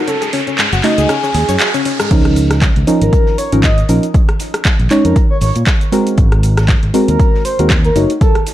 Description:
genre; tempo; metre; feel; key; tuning
deep house; 118 BPM; 4/4; swing 56% on 16ths; Db major; A4 = 440 Hz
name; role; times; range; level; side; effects
analog pluck; arpeggios; 0.0-2.1 s; Ab3 to Db5; -20 LUFS; left 4 dB; chorus, sidechain pumping, analog delay
riser; sound effects; 0.0-2.1 s; none; -23 LUFS; left 1 dB; none
breathy flute-like synth lead; melody; 0.1-8.4 s; Ab4 to Eb5; -20 LUFS; equal; wide subtle chorus, analog delay
house drum kit; drums; 0.1-8.5 s; cabasa, crash cymbal, handclaps, hi-hat, rim click; -19 LUFS; equal; none
overdriven fingered electric bass; bass; 0.7-8.0 s; Gb1 to Bb2; -15 LUFS; equal; sidechain pumping
deep mellow chord stab; stabs; 0.8-8.1 s; F3 to Eb5; -16 LUFS; right 1 dB; chorus, sidechain pumping, tape echo
compact cocktail drum kit; drums; 2.1-8.5 s; hi-hat, snare drum; -34 LUFS; left 2 dB; high-pass filter on hats, high-pass filter on snare, high-pass filter on room
electronic kick drum; drums; 2.1-8.3 s; none; -12 LUFS; equal; overdrive
room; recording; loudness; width
light reverb; cassette tape; -10 LUFS; side -13 dB against mid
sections
0.0-2.1 A section; 2.1-8.5 B section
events
build-up 0.0-2.1; riser 0.0-2.1; filter sweep on synth stab 0.0-2.1; drop 2.1-8.5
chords
0.0 Gbm6; 2.1 Db69; 4.1 Bbm11; 6.2 Ab9; 8.0 Gbm6

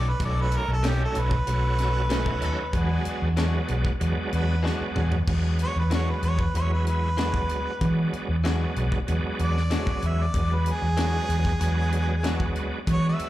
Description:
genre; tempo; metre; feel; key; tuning
straight-eighth soul blues; 95 BPM; 4/4; straight; E mixolydian; A4 = 439 Hz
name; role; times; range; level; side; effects
warm harmonica; melody; 0.0-13.3 s; G4 to E5; -30 LUFS; right 1 dB; overdrive, slapback echo
bright tonewheel organ; accompaniment; 0.0-13.3 s; C#3 to F#4; -31 LUFS; right 3 dB; slow rotary speaker, chorus vibrato, slapback echo
bright horn section; sustained chords; 0.0-5.1 s; C#4 to B4; -38 LUFS; left 1 dB; none
vintage muted fingered electric bass; bass; 0.0-13.2 s; B1 to E3; -24 LUFS; equal; none
tight funk drum kit; drums; 0.2-13.3 s; crash cymbal, hi-hat, kick drum, snare drum, toms; -29 LUFS; equal; none
direct-recorded clean electric guitar; stabs; 0.8-12.4 s; B2 to F#4; -35 LUFS; left 5 dB; slapback echo
room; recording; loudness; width
small room ambience; live gig heard through the venue's PA, club reverb; -22 LUFS; side -14 dB against mid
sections
0.0-5.3 A section; 5.3-13.3 A section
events
harmonica solo 0.0-5.3, 5.3-13.3; drum fill 4.6-5.3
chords
0.0 B9; 2.7 E9

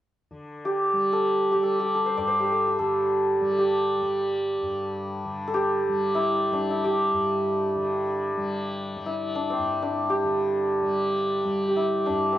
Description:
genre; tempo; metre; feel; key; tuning
indian classical, Hindustani; free time; none; none; G raga durga; A4 = 440 Hz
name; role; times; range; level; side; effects
tanpura; drone; 0.3-12.4 s; G2 to G3; -32 LUFS; left 2 dB; none
santur; melody; 0.7-12.4 s; C4 to D5; -23 LUFS; equal; none
room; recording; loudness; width
wet recital hall reverb, RT60 1.4 s; worn, warbling old tape, cassette tape, warbly pitch drift; -22 LUFS; side -13 dB against mid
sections
0.3-12.4 A section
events
none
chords
none

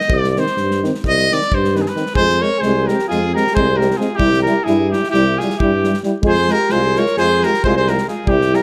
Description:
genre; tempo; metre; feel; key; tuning
balkan folk, Balkan brass band; 264 BPM (eighths); 9/8; straight; F harmonic minor; A4 = 440 Hz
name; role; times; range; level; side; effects
bright trumpet; melody; 0.0-8.6 s; G4 to Eb5; -21 LUFS; equal; none
natural country drum kit; percussion; 0.0-8.6 s; kick drum, snare drum; -26 LUFS; equal; none
warm tuba; bass; 0.1-8.5 s; C2 to G2; -22 LUFS; equal; none
warm euphonium; accompaniment; 0.4-8.6 s; C4 to F4; -26 LUFS; equal; none
warm euphonium; accompaniment; 0.4-8.6 s; Eb3 to Ab3; -25 LUFS; equal; none
warm alto saxophone; second line; 2.1-8.6 s; E4 to Bb4; -24 LUFS; equal; none
room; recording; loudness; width
moderate recital hall reverb, RT60 1.7 s; none; -16 LUFS; mono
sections
0.0-2.1 A section; 2.1-8.6 B section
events
trumpet solo 0.0-2.1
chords
0.1 Cm; 2.1 Fm; 4.2 C; 6.2 Fm

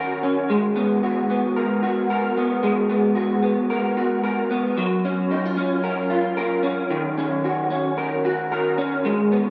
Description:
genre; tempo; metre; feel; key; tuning
indie pop; 112 BPM; 4/4; swing 55% on 16ths; unclear; A4 = 440 Hz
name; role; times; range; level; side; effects
electric guitar through a small old amp; solo; 0.0-9.5 s; D#3 to A#4; -22 LUFS; equal; ensemble chorus, warbly pitch drift, diffuse ambient delay
room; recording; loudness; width
wet lush hall reverb, RT60 2.3 s; dreamy mix soaked in reverb; -22 LUFS; mono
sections
0.0-9.5 A section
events
none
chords
0.5 G#m9; 4.8 F#maj7; 6.9 D#m7

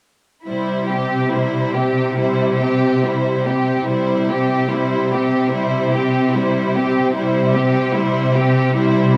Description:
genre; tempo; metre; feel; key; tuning
classical; 70-76 BPM; 4/4; rubato; C major; A4 = 437 Hz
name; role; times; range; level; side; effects
rich chamber violin section; melody; 0.5-9.1 s; G4 to C5; -27 LUFS; equal; none
rich studio violin section; second line; 0.5-9.1 s; E4 to G4; -24 LUFS; equal; none
rich chamber viola section; accompaniment; 0.5-9.1 s; G3 to C4; -23 LUFS; equal; none
clear studio cello section; bass; 0.5-9.2 s; C3; -22 LUFS; equal; none
room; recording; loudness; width
moderate scoring stage reverb, RT60 1.7 s; none; -18 LUFS; mono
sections
0.5-9.2 A section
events
none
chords
0.5 C

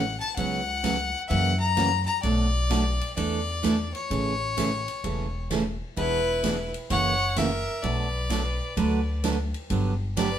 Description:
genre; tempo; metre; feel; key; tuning
country, western swing; 129 BPM; 4/4; swing 66% on 8ths; A major; A4 = 440 Hz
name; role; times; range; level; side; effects
bright fiddle; melody; 0.0-10.4 s; B4 to A#5; -28 LUFS; left 4 dB; none
picked steel-string acoustic guitar; accompaniment; 0.0-10.3 s; B2 to B4; -28 LUFS; right 4 dB; none
upright bass; bass; 0.0-10.4 s; E1 to F#2; -28 LUFS; left 1 dB; none
swinging big-band drum kit; drums; 0.2-10.3 s; hi-hat, kick drum, ride cymbal, snare drum; -35 LUFS; equal; none
clear fiddle; second line; 6.0-10.4 s; E4 to C#5; -33 LUFS; right 3 dB; none
room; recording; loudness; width
moderate studio reverb, RT60 0.8 s; band playing live in one room; -23 LUFS; side -10 dB against mid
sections
0.0-10.4 A section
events
none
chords
0.4 C#7sus4; 1.3 F#7; 2.2 Bm7; 3.2 E7sus4; 4.1 Amaj7; 6.0 E7; 6.9 F#7; 7.8 Bm7; 8.8 D6; 9.7 Gmaj7

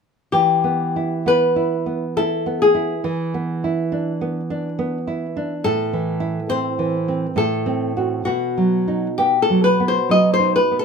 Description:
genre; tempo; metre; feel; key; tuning
romantic duo for nylon-string guitar and classical guitar; 68 BPM; 3/4; uneven beats, rubato; unclear; A4 = 440 Hz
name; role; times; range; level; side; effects
flamenco guitar; melody; 0.3-10.8 s; F#4 to D#5; -18 LUFS; left 3 dB; none
nylon-string guitar; accompaniment; 0.3-10.8 s; A2 to F#4; -21 LUFS; right 4 dB; none
room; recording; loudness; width
light reverb; minimal, uncompressed stereo recording; -17 LUFS; side -6 dB against mid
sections
0.3-10.8 A section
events
none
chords
0.3 Em; 3.1 E7; 5.7 Am; 7.4 F#dim/A; 8.3 B

